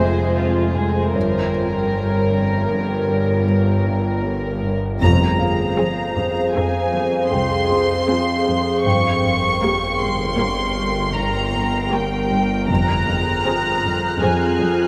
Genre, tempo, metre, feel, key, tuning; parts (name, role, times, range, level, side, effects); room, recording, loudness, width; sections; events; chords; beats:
cinematic; 78 BPM; 5/4; straight; F minor; A4 = 440 Hz
warm studio violin section; melody; 0.0-14.9 s; Ab4 to Db6; -26 LUFS; equal
rich studio violin section; second line; 0.0-14.8 s; F4 to Db5; -32 LUFS; equal
warbly tape-like pad; sustained chords; 0.0-14.9 s; F4 to C6; -26 LUFS; equal; chorus, built-in reverb
warm symphonic cello section; riff; 0.0-14.8 s; F2 to G3; -28 LUFS; equal
rich studio double bass section; bass; 0.0-13.3 s; F1 to C2; -25 LUFS; equal
warm studio cello section; bass; 0.0-13.3 s; C2 to Ab3; -30 LUFS; equal
bowed-like drone; drone; 0.0-14.9 s; G1 to F2; -26 LUFS; equal; built-in reverb
felt-muted upright piano; texture; 0.0-12.7 s; F4 to G5; -34 LUFS; equal
warm studio viola section; accompaniment; 5.8-14.8 s; Bb3 to Ab4; -32 LUFS; equal
dark studio violin section; texture; 12.7-14.9 s; F6 to C7; -33 LUFS; equal
wet huge ambient reverb, RT60 8.2 s; in a vast, echoing space; -19 LUFS; mono
0.0-5.0 A section; 5.0-14.9 A section
band accent 5.0-5.8
0.0 Fm; 1.2 Gdim; 5.0 Fm; 8.8 Gdim; 12.7 Fm
0.39 | 1.16 1.92 2.69 3.46 4.23 | 5.00 5.77 6.54 7.31 8.08 | 8.85 9.62 10.38 11.15 11.92 | 12.69 13.46 14.23